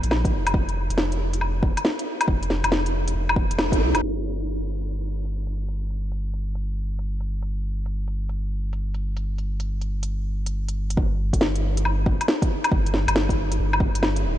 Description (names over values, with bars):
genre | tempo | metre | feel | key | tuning
future garage | 138 BPM | 4/4 | swing 65% on 16ths | G minor | A4 = 440 Hz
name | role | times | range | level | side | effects
warm sub bass | bass | 0.0-14.4 s | D1 to C2 | -25 LUFS | equal | sidechain pumping
organic electronic drum kit | drums | 0.0-14.2 s | hi-hat, snare drum, woodblock | -24 LUFS | equal | low-pass filter on hats, low-pass filter on perc, low-pass filter on snare
electronic kick drum | drums | 0.2-3.8, 11.0-13.9 s | none | -23 LUFS | equal | overdrive
room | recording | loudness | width
light reverb, digital ambience | low-pass filter | -22 LUFS | side -12 dB against mid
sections
0.0-4.0 A section; 4.0-11.0 B section; 11.0-14.4 C section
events
band accent 3.6; filter sweep on drum 4.0-11.0; filter sweep 4.0-11.0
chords
none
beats
0.11 | 0.54 0.98 1.41 1.85 | 2.28 2.72 3.15 3.59 | 4.02 4.46 4.89 5.33 | 5.76 6.20 6.63 7.07 | 7.50 7.93 8.37 8.80 | 9.24 9.67 10.11 10.54 | 10.98 11.41 11.85 12.28 | 12.72 13.15 13.59 14.02